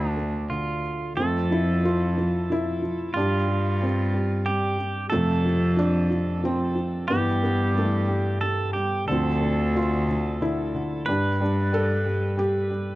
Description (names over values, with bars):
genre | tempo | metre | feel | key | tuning
acoustic folk-pop ballad | 91 BPM | 3/4 | straight | unclear | A4 = 440 Hz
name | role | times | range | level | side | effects
felt-muted upright piano | melody | 0.0-13.0 s | C3 to A4 | -26 LUFS | equal | none
pedal steel guitar | second line | 0.0-13.0 s | E4 to B4 | -30 LUFS | right 3 dB | none
warm cello | bass | 0.0-12.7 s | D2 to G2 | -25 LUFS | equal | none
room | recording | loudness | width
little or no reverb | dry, close 1970s-style studio recording | -22 LUFS | side -17 dB against mid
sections
0.0-1.2 A section; 1.2-13.0 B section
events
none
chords
0.0 Dm; 1.2 F; 3.1 Gsus4; 5.1 F; 7.1 G69; 9.1 Dm7; 11.1 Gadd9